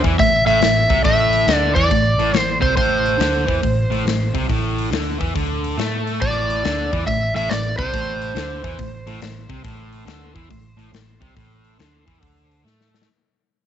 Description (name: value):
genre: blues rock power trio and southern rock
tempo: 140 BPM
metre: 4/4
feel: swing 65% on 8ths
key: A minor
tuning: A4 = 440 Hz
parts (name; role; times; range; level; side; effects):
- distorted electric guitar; riff; 0.0-13.1 s; A2 to A3; -23 LUFS; equal; distortion
- vintage muted picked electric bass; bass; 0.0-13.1 s; A1 to A2; -24 LUFS; right 1 dB; none
- big rock drum kit; drums; 0.0-13.1 s; hi-hat, kick drum, snare drum; -24 LUFS; left 3 dB; none
- overdriven slide guitar; melody; 0.2-12.6 s; C5 to E5; -19 LUFS; right 1 dB; none
room: light reverb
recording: 1960s-style stereo, nothing above 7.9 kHz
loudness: -16 LUFS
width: side -10 dB against mid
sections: 0.0-13.1 A section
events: fade-out 0.0-13.1; drum fill 12.7-13.1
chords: 0.0 Am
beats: 0.19 0.62 | 1.05 1.48 1.91 2.34 | 2.77 3.20 3.63 4.06 | 4.49 4.92 5.35 5.78 | 6.21 6.64 7.07 7.50 | 7.93 8.36 8.79 9.22 | 9.65 10.08 10.51 10.94 | 11.37 11.80 12.22 12.65